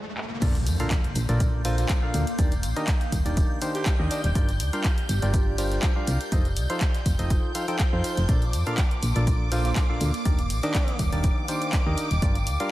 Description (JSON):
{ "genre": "piano house", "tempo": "122 BPM", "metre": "4/4", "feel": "swing 54% on 16ths", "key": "Bb major", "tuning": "A4 = 440 Hz", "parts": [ { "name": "riser and impact", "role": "sound effects", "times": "0.0-2.4 s", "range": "none", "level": "-32 LUFS", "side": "equal", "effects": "none" }, { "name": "punchy analog drum machine", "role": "drums", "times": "0.2-12.7 s", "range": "crash cymbal, handclaps, hi-hat", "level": "-34 LUFS", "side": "equal", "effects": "low-pass filter on hats, low-pass filter on snare, low-pass filter on cymbals" }, { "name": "string machine, violins", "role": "sustained chords", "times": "0.4-12.7 s", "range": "D6 to G6", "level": "-36 LUFS", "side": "equal", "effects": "ensemble chorus, sidechain pumping" }, { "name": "percussive organ stab", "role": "riff", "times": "0.4-12.7 s", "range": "Bb2 to G5", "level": "-30 LUFS", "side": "equal", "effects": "chorus, cassette tape, sidechain pumping, tape echo" }, { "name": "solid FM bass", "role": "bass", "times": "0.4-12.6 s", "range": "Eb1 to F2", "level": "-25 LUFS", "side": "equal", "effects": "sidechain pumping" }, { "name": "dusty soul sampler-style drum kit", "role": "drums", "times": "0.4-12.6 s", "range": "hi-hat, shaker, snare drum", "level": "-44 LUFS", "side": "right 1 dB", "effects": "none" }, { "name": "electronic kick drum", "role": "drums", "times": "0.4-12.3 s", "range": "none", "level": "-24 LUFS", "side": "equal", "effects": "none" }, { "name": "tambourine", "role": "percussion", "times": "0.4-12.7 s", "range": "none", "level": "-42 LUFS", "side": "left 3 dB", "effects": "none" }, { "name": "warbly tape-like pad", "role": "texture", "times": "1.1-12.7 s", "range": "Eb3 to D6", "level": "-37 LUFS", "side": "right 2 dB", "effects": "chorus, built-in reverb, phaser, sidechain pumping" }, { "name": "raspy alto saxophone", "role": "melody", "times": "1.6-4.3, 9.5-11.0 s", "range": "D4 to G4", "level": "-36 LUFS", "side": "right 1 dB", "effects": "tape echo" } ], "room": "light reverb, digital ambience", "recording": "none", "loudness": "-22 LUFS", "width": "side -16 dB against mid", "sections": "0.4-12.7 A section", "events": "break 0.0-0.4; riser 0.0-0.4; drum fill 0.2; drop 0.4-12.7; impact 0.4-2.4", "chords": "0.4 Bbmaj7; 2.4 Ebmaj7; 4.4 Gm7; 6.3 F7; 8.3 Bbmaj7; 10.3 Ebmaj7" }